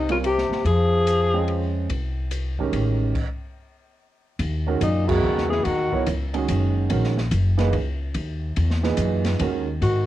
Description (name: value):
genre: modal jazz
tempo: 144 BPM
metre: 3/4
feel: swing 65% on 8ths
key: Eb phrygian from 4.4 s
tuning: A4 = 438 Hz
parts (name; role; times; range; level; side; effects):
- mellow alto saxophone; melody; 0.0-1.7, 4.8-6.1, 9.8-10.1 s; Eb4 to Ab4; -23 LUFS; left 1 dB; none
- bright trombone; second line; 0.0-1.7, 4.8-6.1, 9.8-10.1 s; Bb2 to F3; -29 LUFS; left 8 dB; cassette tape
- upright bass; bass; 0.0-10.1 s; Gb1 to Ab2; -23 LUFS; left 1 dB; none
- warm grand piano; accompaniment; 0.1-9.7 s; Bb2 to G5; -26 LUFS; right 7 dB; cassette tape
- open jazz drum kit; drums; 0.1-9.9 s; crash cymbal, hi-hat, kick drum, ride cymbal, snare drum; -32 LUFS; left 1 dB; cassette tape
room: moderate studio ambience, RT60 0.5 s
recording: home recording on cassette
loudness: -20 LUFS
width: side -14 dB against mid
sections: 0.0-4.4 A section; 4.4-10.1 B section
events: stop 3.1-4.4; band accent 5.0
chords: 0.0 Fm/C; 3.1 N.C.; 4.4 Ebm7; 9.4 Ab7(no3)